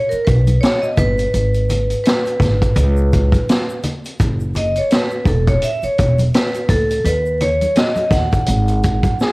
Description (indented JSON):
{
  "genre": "hip hop, jazz-hop",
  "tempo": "84 BPM",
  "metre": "4/4",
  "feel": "swing 58% on 16ths",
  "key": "unclear",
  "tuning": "A4 = 440 Hz",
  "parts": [
    { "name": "vibraphone with medium hard mallets", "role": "accompaniment", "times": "0.0-9.2 s", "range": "A4 to F#5", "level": "-19 LUFS", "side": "equal", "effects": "cassette tape" },
    { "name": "upright bass", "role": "bass", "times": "0.1-9.1 s", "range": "E1 to D#2", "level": "-17 LUFS", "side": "equal", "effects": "transformer saturation" },
    { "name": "vintage drum kit", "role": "drums", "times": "0.1-9.3 s", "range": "hi-hat, kick drum, snare drum", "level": "-18 LUFS", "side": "equal", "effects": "cassette tape" },
    { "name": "egg shaker and congas", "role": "percussion", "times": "0.1-9.3 s", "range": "none", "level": "-26 LUFS", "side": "left 1 dB", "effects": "none" },
    { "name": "breathy flugelhorn", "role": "melody", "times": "9.2-9.3 s", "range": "G#4", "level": "-20 LUFS", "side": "equal", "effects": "cassette tape" }
  ],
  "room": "little or no reverb",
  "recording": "home recording on cassette, vinyl crackle",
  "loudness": "-14 LUFS",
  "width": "side -24 dB against mid",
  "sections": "0.0-9.3 A section",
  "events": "vibraphone solo 0.0-9.3",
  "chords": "0.0 D#7b13; 1.3 G#m; 2.8 Bsus2/C#; 4.2 E13sus4; 7.1 D#m7; 8.5 F#sus2/G#"
}